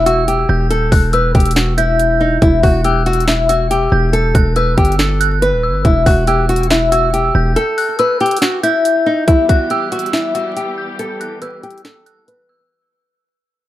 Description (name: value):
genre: hip hop, trap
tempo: 140 BPM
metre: 4/4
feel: half-time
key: E harmonic minor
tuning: A4 = 440 Hz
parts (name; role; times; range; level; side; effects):
- dark detuned synth bell; second line; 0.0-12.7 s; E6 to G6; -20 LUFS; right 2 dB; chorus, phaser, tape echo
- distorted 808-style bass; bass; 0.0-7.6 s; D#1 to G1; -16 LUFS; equal; distortion
- nylon-string guitar; melody; 0.1-12.7 s; D#4 to B4; -16 LUFS; left 2 dB; low-pass filter, tape echo
- trap drum kit; drums; 0.1-12.4 s; hi-hat, kick drum, snare drum; -16 LUFS; equal; none
- clear symphonic string section; sustained chords; 9.3-12.7 s; E3 to G4; -28 LUFS; equal; low-pass filter
room: light reverb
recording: vinyl crackle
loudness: -11 LUFS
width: side -14 dB against mid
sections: 0.0-9.3 A section; 9.3-12.7 B section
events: kick muted 7.6-9.3; fade-out 9.3-12.7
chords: 0.0 Em